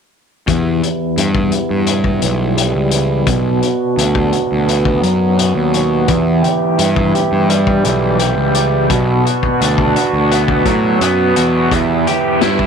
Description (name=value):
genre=psychedelic rock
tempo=85 BPM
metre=4/4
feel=straight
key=E minor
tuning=A4 = 440 Hz
part: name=pedal harmonium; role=sustained chords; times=0.5-12.7 s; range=F#4 to B5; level=-20 LUFS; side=right 8 dB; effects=low-pass filter
part: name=crunchy overdriven guitar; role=riff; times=0.5-12.7 s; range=E2 to G4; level=-16 LUFS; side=left 1 dB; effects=tremolo, low-pass filter
part: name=fuzz picked electric bass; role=bass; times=0.5-12.7 s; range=B1 to A2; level=-16 LUFS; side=equal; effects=overdrive
part: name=raw garage drum kit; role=drums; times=0.5-12.7 s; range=hi-hat, kick drum, snare drum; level=-19 LUFS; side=left 5 dB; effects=none
room=moderate plate reverb, RT60 1.4 s, small room ambience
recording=1960s-style stereo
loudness=-12 LUFS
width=side -6 dB against mid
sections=0.5-12.7 A section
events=filter sweep 0.5-12.7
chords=0.5 Em; 3.3 Bm; 6.1 Em; 8.9 Bm; 11.7 Em